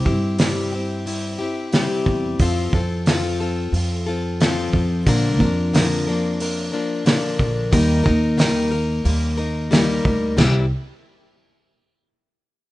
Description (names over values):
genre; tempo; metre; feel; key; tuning
folk rock and heartland rock; 90 BPM; 4/4; straight; unclear; A4 = 438 Hz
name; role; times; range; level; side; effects
picked plugged-in steel-string acoustic guitar; accompaniment; 0.0-10.7 s; Bb2 to Bb4; -22 LUFS; left 3 dB; none
upright bass; bass; 0.0-10.7 s; Bb1 to G2; -21 LUFS; right 1 dB; none
cloth-damped thuddy drum kit; drums; 0.1-10.5 s; crash cymbal, hi-hat, kick drum, snare drum, toms; -21 LUFS; right 1 dB; none
room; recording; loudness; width
small room ambience; rough home demo mix, nothing above 10.4 kHz; -17 LUFS; side -17 dB against mid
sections
0.0-10.4 A section; 10.4-12.7 B section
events
none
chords
0.0 C; 2.4 F; 5.1 Bb; 7.7 Eb; 10.4 C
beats
0.40 1.06 1.73 | 2.40 3.06 3.73 4.40 | 5.07 5.73 6.40 7.06 | 7.73 8.39 9.06 9.73 | 10.39